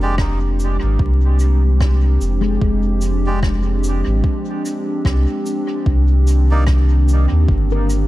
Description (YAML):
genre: ambient dub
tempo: 74 BPM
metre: 4/4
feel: swing 59% on 16ths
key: F dorian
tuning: A4 = 441 Hz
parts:
  - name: warbly tape-like pad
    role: sustained chords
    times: 0.0-8.1 s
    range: Eb3 to G4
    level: -23 LUFS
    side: right 1 dB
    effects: chorus, built-in reverb
  - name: handpan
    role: arpeggios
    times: 0.0-8.1 s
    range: Ab3 to Bb4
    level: -27 LUFS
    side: left 6 dB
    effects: tape echo
  - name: melodica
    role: stabs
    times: 0.0-6.6 s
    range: Ab3 to D5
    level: -30 LUFS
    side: right 2 dB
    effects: dub echo
  - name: warm sub bass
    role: bass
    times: 0.0-8.1 s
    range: F1 to Eb2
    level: -15 LUFS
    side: equal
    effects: none
  - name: electronic kick drum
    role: drums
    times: 0.2-7.7 s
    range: none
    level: -19 LUFS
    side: equal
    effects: overdrive
  - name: rim click and shaker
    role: drums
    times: 0.2-8.1 s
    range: none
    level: -33 LUFS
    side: equal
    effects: dub echo
room: studio ambience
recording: vinyl crackle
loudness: -14 LUFS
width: side -16 dB against mid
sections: 0.0-8.1 A section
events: none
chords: 0.0 Fm69; 5.9 Cm9